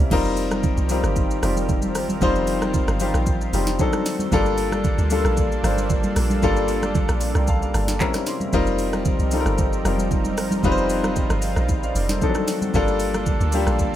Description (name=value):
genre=amapiano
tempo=114 BPM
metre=4/4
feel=straight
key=unclear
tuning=A4 = 441 Hz
part: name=clear grand piano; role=accompaniment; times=0.0-14.0 s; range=F3 to C6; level=-23 LUFS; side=left 3 dB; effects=none
part: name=lush unison pad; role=sustained chords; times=0.0-14.0 s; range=C3 to Bb4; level=-29 LUFS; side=right 2 dB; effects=chorus
part: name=deep log drum bass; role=bass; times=0.0-14.0 s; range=F1 to D2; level=-24 LUFS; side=right 1 dB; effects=none
part: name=afro-pop drum kit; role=drums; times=0.1-13.9 s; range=crash cymbal, handclaps, hi-hat, kick drum, rim click, shaker, snare drum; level=-25 LUFS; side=right 1 dB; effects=none
part: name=congas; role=percussion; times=0.1-13.9 s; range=none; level=-29 LUFS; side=right 2 dB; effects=none
room=light reverb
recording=none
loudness=-19 LUFS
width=side -12 dB against mid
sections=0.0-14.0 A section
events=grand piano fill 7.0-8.5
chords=0.1 F9sus4; 3.8 D7b9; 4.3 Gm9; 8.0 C7b9; 8.5 F9sus4; 12.2 D7b9; 12.7 Gm9